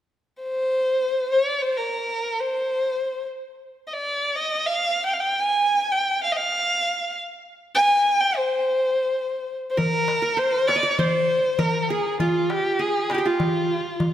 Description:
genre	Turkish makam ensemble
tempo	free time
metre	none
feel	none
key	C makam ussak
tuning	A4 = 439 Hz
part	dark violin	melody	0.4-14.1 s	F4 to Ab5	-21 LUFS	equal	none
part	qanun	second line	9.8-14.1 s	F4 to Eb5	-27 LUFS	right 2 dB	none
part	darbuka	percussion	9.8-14.1 s	none	-26 LUFS	left 2 dB	none
room	moderate scoring stage reverb, RT60 1.9 s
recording	none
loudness	-20 LUFS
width	side -11 dB against mid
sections	0.2-9.8 A section; 9.8-14.1 B section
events	none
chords	none

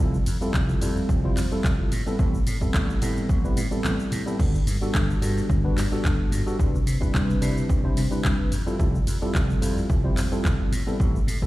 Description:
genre	nu-disco, nu disco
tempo	109 BPM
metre	4/4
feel	swing 54% on 16ths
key	unclear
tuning	A4 = 441 Hz
part	tine electric piano	accompaniment	0.0-11.5 s	G3 to C5	-28 LUFS	equal	analog chorus, sidechain pumping, digital delay
part	vintage slap bass	bass	0.0-11.5 s	F1 to C3	-27 LUFS	equal	none
part	house drum kit	drums	0.1-11.5 s	crash cymbal, handclaps, hi-hat, ride cymbal, shaker	-34 LUFS	equal	none
part	electronic kick drum	drums	0.5-11.5 s	none	-24 LUFS	equal	none
room	digital ambience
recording	played on a big sound system in a bare room, large studio reverb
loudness	-21 LUFS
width	side -17 dB against mid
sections	0.0-11.5 A section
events	kick drops out 3.8-4.4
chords	0.0 Fmaj7; 1.9 Am7; 4.4 Gmaj7; 6.6 Cmaj7; 8.5 Fmaj7; 10.7 Am7

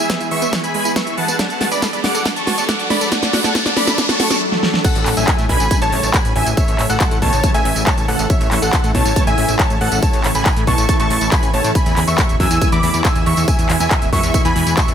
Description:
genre	uplifting trance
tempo	139 BPM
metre	4/4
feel	straight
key	A major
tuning	A4 = 438 Hz
part	dense compressed supersaw	melody	0.0-14.9 s	A4 to E6	-21 LUFS	right 1 dB	cassette tape, sidechain pumping, digital delay
part	shimmering ambient pad	sustained chords	0.0-14.9 s	B2 to A4	-23 LUFS	equal	chorus, built-in reverb, sidechain pumping
part	analog pluck	arpeggios	0.0-4.4 s	E3 to D5	-26 LUFS	right 4 dB	chorus, sidechain pumping, digital delay
part	riser	sound effects	0.2-4.4 s	none	-23 LUFS	equal	none
part	big-room dance drum kit	drums	0.1-14.9 s	crash cymbal, handclaps, hi-hat, snare drum, tambourine	-20 LUFS	equal	studio reverb
part	electronic kick drum	drums	0.1-14.9 s	none	-17 LUFS	equal	high-pass filter on kick, studio reverb
part	bright baby grand piano	second line	4.8-14.9 s	E5 to E6	-26 LUFS	equal	sidechain pumping, digital delay
part	plucky analog bass	bass	5.0-14.9 s	E1 to A2	-20 LUFS	equal	sidechain pumping
room	light reverb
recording	none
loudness	-13 LUFS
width	side -8 dB against mid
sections	0.0-4.8 A section; 4.8-14.9 B section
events	build-up 0.0-4.8; drum fill 0.0-4.4, 4.5-4.8; filter sweep on synth pluck 0.0-4.8; riser 0.2-4.4; drop 4.8-14.9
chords	0.0 E; 1.4 D; 4.8 A; 11.8 E

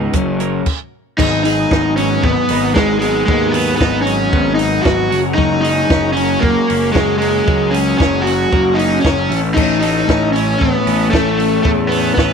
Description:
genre	indie rock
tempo	115 BPM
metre	4/4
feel	straight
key	unclear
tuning	A4 = 440 Hz
part	twelve-string electric guitar	riff	0.0-12.3 s	F#2 to A#4	-22 LUFS	left 15 dB	none
part	twelve-string electric guitar	riff	0.0-12.3 s	F#2 to A4	-22 LUFS	right 12 dB	wide subtle chorus, slapback echo
part	fuzz picked electric bass	bass	0.0-12.3 s	F#1 to E2	-20 LUFS	equal	overdrive
part	compact cocktail drum kit	drums	0.1-12.3 s	crash cymbal, hi-hat, kick drum, snare drum	-19 LUFS	equal	none
part	overdriven electric guitar	melody	1.2-12.3 s	G#3 to F#4	-16 LUFS	equal	slapback echo
part	combo organ	sustained chords	1.2-12.3 s	A#4 to E6	-28 LUFS	left 12 dB	none
room	light reverb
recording	1960s-style stereo with parts hard left and right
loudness	-12 LUFS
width	side -6 dB against mid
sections	0.0-1.2 A section; 1.2-12.3 B section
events	overdriven electric guitar solo 0.0-1.2; stop 0.7-1.2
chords	0.1 F#; 1.2 G#m7; 5.1 F#add9; 9.3 A

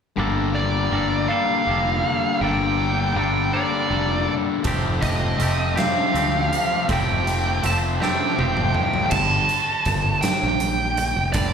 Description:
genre	quiet-loud alternative rock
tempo	54 BPM (dotted quarters)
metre	6/8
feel	straight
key	G minor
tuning	A4 = 439 Hz
part	twangy electric guitar	arpeggios	0.2-11.5 s	G2 to A4	-28 LUFS	right 4 dB	slapback echo
part	distorted electric guitar	riff	0.2-9.1 s	F2 to D4	-25 LUFS	left 11 dB	distortion, slapback echo
part	fuzz fingered electric bass	bass	0.2-11.5 s	F1 to D2	-24 LUFS	equal	overdrive
part	high-gain lead guitar	melody	0.6-11.5 s	D5 to A5	-23 LUFS	right 2 dB	distortion, slapback echo, analog delay
part	big rock drum kit	drums	4.6-11.5 s	crash cymbal, hi-hat, kick drum, snare drum, toms	-25 LUFS	right 1 dB	none
room	light reverb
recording	live gig heard through the venue's PA, club reverb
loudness	-19 LUFS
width	side -7 dB against mid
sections	0.2-9.1 A section; 9.1-11.5 B section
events	drum fill 8.0-9.1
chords	0.2 Gmadd9; 4.7 Fadd9; 9.1 Gmadd9

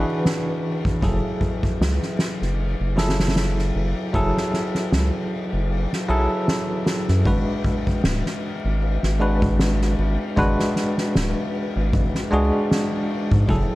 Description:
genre	trip hop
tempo	77 BPM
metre	4/4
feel	swing 56% on 16ths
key	unclear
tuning	A4 = 440 Hz
part	bell-like tine electric piano	accompaniment	0.0-13.8 s	E3 to B4	-24 LUFS	equal	tremolo, tape echo
part	round analog bass	bass	0.0-13.7 s	D1 to G#2	-21 LUFS	equal	none
part	soft-mallet drum kit	drums	0.2-13.7 s	kick drum, ride cymbal, snare drum	-24 LUFS	equal	none
room	little or no reverb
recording	vinyl crackle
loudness	-19 LUFS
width	side -18 dB against mid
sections	0.0-7.3 A section; 7.3-13.8 B section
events	kick drops out 5.7-7.3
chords	0.0 E13; 1.0 F#m9; 7.3 G#m7b5

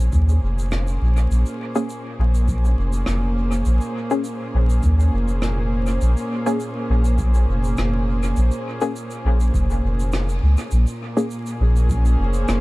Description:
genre	ambient dub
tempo	102 BPM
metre	4/4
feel	swing 53% on 16ths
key	Bb minor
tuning	A4 = 442 Hz
part	dark studio string section	sustained chords	0.0-12.6 s	Bb2 to C5	-26 LUFS	right 1 dB	none
part	soft dub sub bass	bass	0.0-12.6 s	F1 to Eb2	-18 LUFS	equal	none
part	electronic kick drum	drums	0.1-12.0 s	none	-24 LUFS	equal	none
part	shaker and rim click	drums	0.1-12.6 s	none	-33 LUFS	equal	dub echo
part	filtered dub chord stab	stabs	1.8-11.3 s	Bb3 to Ab4	-26 LUFS	left 2 dB	lush chorus, dub echo
room	studio ambience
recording	dark, warm production, vinyl crackle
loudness	-18 LUFS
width	side -20 dB against mid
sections	0.0-10.7 A section; 10.7-12.6 B section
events	fade-in on string section 0.0-10.7; band accent 10.1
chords	0.0 Bbm7

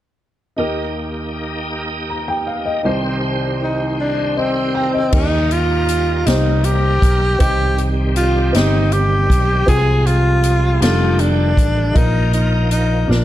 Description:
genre	slow gospel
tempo	53 BPM (dotted quarters)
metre	6/8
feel	straight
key	Eb major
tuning	A4 = 442 Hz
part	warm upright piano	accompaniment	0.6-13.2 s	C2 to Bb5	-22 LUFS	equal	none
part	bright tonewheel organ	sustained chords	0.6-13.2 s	Eb3 to C6	-26 LUFS	right 2 dB	slow rotary speaker, chorus vibrato
part	breathy tenor saxophone	melody	3.6-13.2 s	C4 to Ab4	-19 LUFS	equal	slapback echo
part	fingered electric bass	bass	5.1-13.2 s	F1 to Eb2	-17 LUFS	equal	none
part	swinging big-band drum kit	drums	5.1-13.2 s	crash cymbal, hi-hat, kick drum, snare drum	-20 LUFS	equal	none
room	light reverb, small room ambience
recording	none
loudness	-14 LUFS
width	side -13 dB against mid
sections	0.6-5.1 A section; 5.1-13.2 B section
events	drum fill 13.1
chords	0.6 Eb; 2.9 Cm; 5.1 Eb; 7.4 Cm; 9.7 Fm/C; 10.8 F13; 12.0 Bbsus4

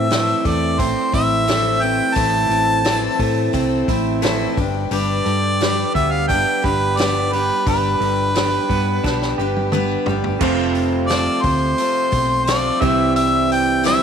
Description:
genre	folk rock and heartland rock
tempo	87 BPM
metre	4/4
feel	straight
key	unclear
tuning	A4 = 441 Hz
part	clear harmonica	melody	0.0-14.0 s	B4 to A5	-20 LUFS	equal	none
part	picked steel-string acoustic guitar	accompaniment	0.0-14.0 s	A2 to C5	-23 LUFS	left 11 dB	none
part	electric guitar through a small old amp	riff	0.0-14.0 s	F2 to G4	-22 LUFS	right 12 dB	none
part	hollow-body short-scale fingered electric bass	bass	0.0-14.0 s	F1 to A2	-24 LUFS	equal	none
part	vintage drum kit	drums	0.1-14.0 s	crash cymbal, hi-hat, kick drum, snare drum, toms	-25 LUFS	equal	none
room	moderate plate reverb, RT60 3.3 s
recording	1960s-style stereo with parts hard left and right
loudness	-16 LUFS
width	side -7 dB against mid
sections	0.0-10.4 A section; 10.4-14.0 B section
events	drum fill 9.0-10.4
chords	0.0 Am; 4.6 G; 10.4 F; 12.8 C

